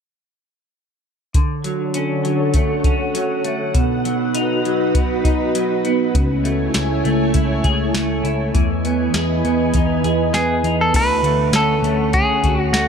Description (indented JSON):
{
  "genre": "dream pop",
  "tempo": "100 BPM",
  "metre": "4/4",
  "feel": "straight",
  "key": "unclear",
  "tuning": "A4 = 440 Hz",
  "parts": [
    { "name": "soft vintage rhythm box", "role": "drums", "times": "1.3-12.9 s", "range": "crash cymbal, hi-hat, kick drum, snare drum", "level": "-20 LUFS", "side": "equal", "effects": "none" },
    { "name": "soft string machine", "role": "sustained chords", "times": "1.4-12.9 s", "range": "D3 to C#6", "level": "-21 LUFS", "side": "left 1 dB", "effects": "ensemble chorus" },
    { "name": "semi-hollow electric guitar", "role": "arpeggios", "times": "1.4-12.9 s", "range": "B2 to G#4", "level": "-21 LUFS", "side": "right 2 dB", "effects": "lush chorus, tape echo" },
    { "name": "vintage muted picked electric bass", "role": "bass", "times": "6.1-12.9 s", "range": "C#2 to E2", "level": "-22 LUFS", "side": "equal", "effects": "none" },
    { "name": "semi-hollow electric guitar", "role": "melody", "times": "10.3-12.9 s", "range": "F#4 to B4", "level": "-18 LUFS", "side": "equal", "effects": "tape echo" }
  ],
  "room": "light reverb",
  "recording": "none",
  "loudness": "-16 LUFS",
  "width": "side -6 dB against mid",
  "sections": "1.3-10.9 A section; 10.9-12.9 B section",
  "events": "none",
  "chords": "1.3 Dmaj7; 3.7 B; 6.1 Amaj7/C#; 8.5 Emaj7; 10.9 Dmaj7",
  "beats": "| 1.35 1.95 2.55 3.15 | 3.75 4.35 4.95 5.55 | 6.15 6.75 7.35 7.95 | 8.55 9.15 9.75 10.35 | 10.95 11.55 12.15 12.75"
}